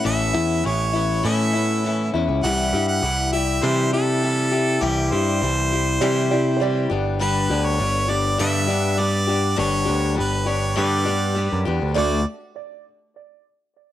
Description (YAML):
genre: rock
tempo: 101 BPM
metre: 4/4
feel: straight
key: unclear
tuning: A4 = 440 Hz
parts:
  - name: picked steel-string acoustic guitar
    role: accompaniment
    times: 0.0-12.2 s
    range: G2 to G4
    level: -23 LUFS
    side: left 6 dB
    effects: cassette tape, plate reverb
  - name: modern bright picked electric bass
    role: bass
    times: 0.0-12.2 s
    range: G1 to C3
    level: -22 LUFS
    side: right 2 dB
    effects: none
  - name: bright harmonica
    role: melody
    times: 0.1-12.2 s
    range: G4 to F#5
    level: -24 LUFS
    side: right 2 dB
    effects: cassette tape, plate reverb
  - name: dark upright piano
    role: second line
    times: 6.0-7.0, 12.0-12.2 s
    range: C#5 to D5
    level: -28 LUFS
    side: right 10 dB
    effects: cassette tape, analog delay
room: moderate small room reverb, RT60 0.6 s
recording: home recording on cassette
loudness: -18 LUFS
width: side -12 dB against mid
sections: 0.0-12.0 A section; 12.0-13.9 B section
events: none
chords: 0.0 Aadd9; 2.4 C; 6.9 G; 12.0 D